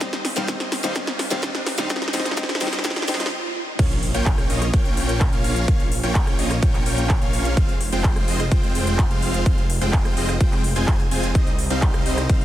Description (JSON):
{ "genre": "EDM, festival progressive house", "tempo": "127 BPM", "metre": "4/4", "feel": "straight", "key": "unclear", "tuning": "A4 = 440 Hz", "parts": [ { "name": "picked steel-string acoustic guitar", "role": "accompaniment", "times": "0.0-3.1 s", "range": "Eb3 to Eb4", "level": "-30 LUFS", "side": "left 2 dB", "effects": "sidechain pumping, dub echo" }, { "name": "supersaw chords", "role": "riff", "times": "0.0-12.4 s", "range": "G3 to Ab5", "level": "-25 LUFS", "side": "equal", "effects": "cassette tape, sidechain pumping, dub echo" }, { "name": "wide detuned saw bass", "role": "bass", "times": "0.0-12.4 s", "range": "F1 to Db2", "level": "-26 LUFS", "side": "equal", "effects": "chorus, sidechain pumping, high-pass filter" }, { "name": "big-room dance drum kit", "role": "drums", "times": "0.0-12.4 s", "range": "crash cymbal, handclaps, hi-hat, rim click, snare drum", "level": "-27 LUFS", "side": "equal", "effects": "overdrive" }, { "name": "electronic kick drum", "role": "drums", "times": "0.0-12.4 s", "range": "none", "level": "-20 LUFS", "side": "equal", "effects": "overdrive, high-pass filter on kick" }, { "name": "riser and impact", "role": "sound effects", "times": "0.0-5.7 s", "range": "none", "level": "-32 LUFS", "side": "right 1 dB", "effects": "none" } ], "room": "little or no reverb", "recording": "dense, heavily limited modern master, high-pass filter", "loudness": "-18 LUFS", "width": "side -13 dB against mid", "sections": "0.0-3.8 A section; 3.8-12.4 B section", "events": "build-up 0.0-3.8; drum fill 0.0-3.3; riser 0.0-3.3; stop 3.3-3.8; drop 3.8-12.4; impact 3.8-5.7", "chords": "0.0 Dbsus2; 3.8 Bbm; 7.6 Fm; 11.3 Cm" }